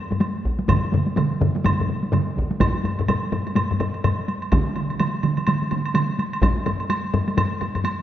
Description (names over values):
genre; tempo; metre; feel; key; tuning
japanese traditional, taiko drum ensemble; 126 BPM; 4/4; swing 60% on 16ths; none; none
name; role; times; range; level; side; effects
taiko ensemble; percussion; 0.1-8.0 s; none; -25 LUFS; equal; none
taiko ensemble; percussion; 0.1-7.8 s; none; -24 LUFS; left 3 dB; none
woodblock; percussion; 0.2-8.0 s; none; -28 LUFS; right 2 dB; none
taiko ensemble; percussion; 0.5-6.6 s; none; -24 LUFS; equal; none
taiko ensemble; percussion; 0.7-6.1 s; none; -25 LUFS; right 4 dB; none
room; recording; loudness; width
wet scoring stage reverb, RT60 1.9 s; none; -20 LUFS; side -11 dB against mid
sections
0.0-2.6 A section; 2.6-8.0 B section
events
none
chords
none